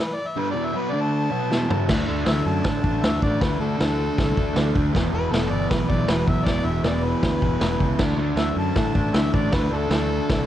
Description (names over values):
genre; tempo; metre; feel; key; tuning
garage rock duo or trio; 157 BPM; 4/4; straight; unclear; A4 = 438 Hz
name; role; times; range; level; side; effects
clear harmonica; melody; 0.0-10.5 s; A4 to A5; -28 LUFS; left 2 dB; overdrive
fuzz guitar; riff; 0.4-10.5 s; E2 to D4; -24 LUFS; right 1 dB; distortion
vintage drum kit; drums; 1.5-10.4 s; crash cymbal, hi-hat, kick drum, snare drum, toms; -24 LUFS; equal; none
growling fingered electric bass; bass; 1.9-10.4 s; E1 to A2; -26 LUFS; equal; overdrive
room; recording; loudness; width
light reverb, studio ambience; cassette tape; -20 LUFS; side -12 dB against mid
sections
0.0-1.9 A section; 1.9-10.5 B section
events
harmonica solo 0.0-1.9; drum fill 1.5-1.9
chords
0.0 Em; 0.9 D5; 1.3 E5; 1.9 D5; 4.9 E5; 8.0 D5